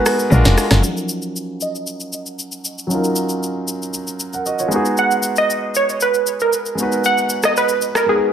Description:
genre	amapiano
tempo	116 BPM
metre	4/4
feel	straight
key	Eb minor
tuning	A4 = 439 Hz
part	warm concert grand piano	accompaniment	0.0-8.3 s	F3 to Gb5	-21 LUFS	equal	low-pass filter
part	smooth R&B drum kit	drums	0.1-8.1 s	hi-hat, rim click, shaker, snare drum	-22 LUFS	left 1 dB	none
part	woody log drum bass	bass	0.3-0.8 s	F1 to Bb1	-13 LUFS	equal	none
part	glassy wavetable pluck	melody	0.8-8.3 s	Ab4 to Gb5	-17 LUFS	right 2 dB	chorus, low-pass filter, tape echo
room	wet plate reverb, RT60 1.3 s, digital ambience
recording	dreamy mix soaked in reverb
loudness	-16 LUFS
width	side -9 dB against mid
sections	0.8-8.3 A section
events	break 0.0-0.8; filter sweep 0.8-8.3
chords	0.3 Bb7b13; 0.8 Ebm7; 4.7 Abm7

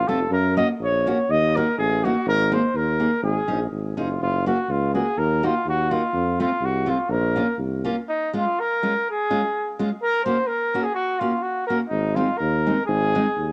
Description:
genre	alpine folk, alpine dance band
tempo	124 BPM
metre	2/4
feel	rubato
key	Bb minor, Db major from 8.1 s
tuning	A4 = 442 Hz
part	mellow trumpet	melody	0.0-13.5 s	Eb4 to Eb5	-25 LUFS	equal	cassette tape
part	warm tuba	bass	0.0-7.9, 11.9-13.5 s	F1 to Gb2	-26 LUFS	equal	none
part	fingerpicked steel-string acoustic guitar	accompaniment	0.1-13.3 s	Ab3 to Ab4	-29 LUFS	equal	cassette tape
room	light reverb, studio ambience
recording	home recording on cassette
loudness	-22 LUFS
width	mono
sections	0.0-8.1 A section; 8.1-13.5 B section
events	none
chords	0.3 Gb; 1.3 Ebm; 2.3 Absus2; 3.2 Dbsus2/Ab; 4.2 Gb; 5.2 Ebm; 6.1 F; 7.1 Bbm; 8.1 Db; 10.0 Gb; 11.9 Ab

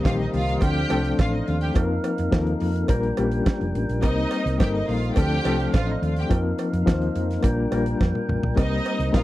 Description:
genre	disco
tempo	106 BPM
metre	4/4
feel	straight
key	C dorian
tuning	A4 = 441 Hz
part	clear studio string section	second line	0.0-9.2 s	Eb4 to G5	-29 LUFS	right 1 dB	none
part	reed electric piano	accompaniment	0.0-9.2 s	D3 to C5	-25 LUFS	left 4 dB	fast tremolo
part	tonewheel organ	sustained chords	0.0-9.2 s	C4 to G5	-32 LUFS	right 1 dB	slow rotary speaker
part	hollow-body short-scale fingered electric bass	bass	0.1-9.2 s	F1 to F2	-25 LUFS	right 1 dB	none
part	damped 70s drum kit	drums	0.1-9.2 s	hi-hat, kick drum, snare drum, toms	-22 LUFS	right 1 dB	none
part	cowbell	percussion	0.1-9.2 s	none	-36 LUFS	right 6 dB	none
room	little or no reverb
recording	dry, close 1970s-style studio recording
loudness	-20 LUFS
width	side -15 dB against mid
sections	0.0-9.2 A section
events	drum fill 8.0-8.6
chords	0.0 Cm7; 0.6 Dm7; 1.8 F7sus4; 2.9 Bb6; 4.0 Cm7; 5.2 Dm7; 6.3 F7sus4; 7.4 Bb6; 8.6 Cm7

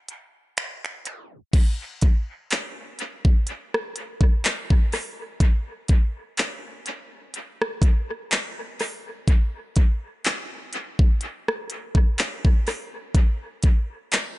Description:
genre	R&B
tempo	62 BPM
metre	4/4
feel	swing 54% on 16ths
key	none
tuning	none
part	trap drum kit	drums	0.1-14.4 s	crash cymbal, finger snaps, handclaps, hi-hat, kick drum, rim click	-21 LUFS	equal	dub echo
room	little or no reverb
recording	echo-heavy mix, tape stop, nothing above 11.0 kHz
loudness	-21 LUFS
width	side -19 dB against mid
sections	0.0-1.5 A section; 1.5-14.4 B section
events	break 0.0-1.5; tape stop 1.1-1.5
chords	none

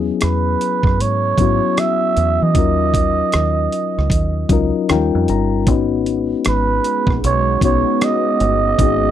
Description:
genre	R&B, neo-soul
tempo	77 BPM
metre	4/4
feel	swing 64% on 16ths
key	Eb minor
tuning	A4 = 440 Hz
part	mellow reed electric piano	accompaniment	0.0-9.1 s	F3 to Bb5	-19 LUFS	left 9 dB	none
part	deep dub fingered electric bass	bass	0.0-9.1 s	G1 to E3	-19 LUFS	right 1 dB	none
part	trumpet with cup mute	melody	0.2-9.1 s	Cb5 to E5	-18 LUFS	right 6 dB	none
part	dusty soul sampler-style drum kit	drums	0.2-9.0 s	hi-hat, kick drum, rim click	-19 LUFS	right 1 dB	none
part	lush unison pad	sustained chords	5.7-9.1 s	Ab3 to Gb4	-25 LUFS	right 5 dB	chorus
room	little or no reverb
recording	dry, close 1970s-style studio recording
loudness	-14 LUFS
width	side -10 dB against mid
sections	0.0-9.1 A section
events	reed electric piano fill 4.1-5.7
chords	0.0 E69; 2.5 Ebm7; 4.9 Eb7; 5.7 Abm11

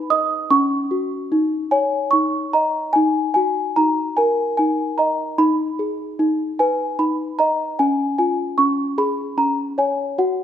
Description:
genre	children's music, lullaby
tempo	75 BPM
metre	3/4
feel	straight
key	unclear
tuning	A4 = 442 Hz
part	small celesta	solo	0.0-10.4 s	C#4 to D#6	-17 LUFS	equal	none
room	moderate recital hall reverb, RT60 1.6 s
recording	recorded in a church or concert hall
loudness	-17 LUFS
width	side -9 dB against mid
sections	0.0-10.4 A section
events	none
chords	0.0 G#m; 0.5 C#sus4; 1.3 C#sus2; 2.9 D#m; 5.4 G#m/D#; 7.8 C#

